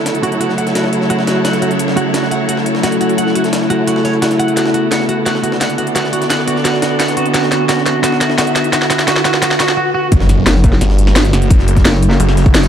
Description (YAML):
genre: dark technical drum and bass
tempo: 173 BPM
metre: 4/4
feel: straight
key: F# minor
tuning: A4 = 440 Hz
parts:
  - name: metallic inharmonic drone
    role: sustained chords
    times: 0.0-12.7 s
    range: C#3 to F#4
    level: -17 LUFS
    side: equal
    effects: chorus, built-in reverb, sidechain pumping
  - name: clear studio string section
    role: texture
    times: 0.0-9.8 s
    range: F#3 to E5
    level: -20 LUFS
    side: equal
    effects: sidechain pumping
  - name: drum and bass drum kit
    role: drums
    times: 0.1-12.7 s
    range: hi-hat, snare drum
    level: -18 LUFS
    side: equal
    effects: high-pass filter on hats, high-pass filter on snare
  - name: jungle sampler-style drum kit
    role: drums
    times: 0.1-12.7 s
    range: hi-hat, snare drum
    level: -24 LUFS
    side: equal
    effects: high-pass filter on hats, high-pass filter on snare, high-pass filter on room
  - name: twelve-string electric guitar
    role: arpeggios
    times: 0.2-10.1 s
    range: F#4 to F#5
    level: -18 LUFS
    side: right 2 dB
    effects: spring reverb, sidechain pumping, low-pass filter, digital delay
  - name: riser and impact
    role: sound effects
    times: 6.2-11.5 s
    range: none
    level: -21 LUFS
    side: equal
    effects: none
  - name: snarling distorted saw bass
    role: bass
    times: 10.1-12.7 s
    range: F#1 to G1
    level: -12 LUFS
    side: equal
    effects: distortion, tube saturation, sidechain pumping
  - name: electronic kick drum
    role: drums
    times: 10.1-12.5 s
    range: none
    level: -10 LUFS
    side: equal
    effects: none
  - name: metallic wobble bass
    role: bass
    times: 10.5-12.2 s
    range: F#1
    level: -12 LUFS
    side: equal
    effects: chorus, tube saturation
room: light reverb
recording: dark, warm production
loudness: -11 LUFS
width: side -9 dB against mid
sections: 0.0-10.1 A section; 10.1-12.7 B section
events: build-up 0.0-10.1; drum fill 4.6-9.8; riser 6.2-9.8; break 9.8-10.1; drop 10.1-12.7; impact 10.1-11.5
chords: 0.0 F#m; 4.6 Bm; 10.1 F#m